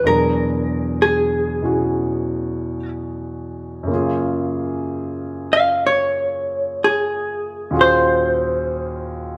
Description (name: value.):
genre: jazz ballad.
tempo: 62 BPM.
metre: 4/4.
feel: swing 66% on 8ths.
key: unclear.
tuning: A4 = 440 Hz.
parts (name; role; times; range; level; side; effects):
vintage hollow-body jazz guitar; melody; 0.0-9.4 s; G#4 to F5; -20 LUFS; equal; none.
warm concert grand piano; accompaniment; 0.0-9.4 s; Eb2 to G#4; -24 LUFS; equal; none.
room: wet large studio reverb, RT60 1.4 s.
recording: band playing live in one room.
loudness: -20 LUFS.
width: mono.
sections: 0.0-9.4 A section.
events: none.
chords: 0.0 E9; 3.9 Gbmaj9; 7.7 Ebm11.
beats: | 0.04 1.01 1.97 2.93 | 3.89 4.86 5.82 6.78 | 7.74 8.70.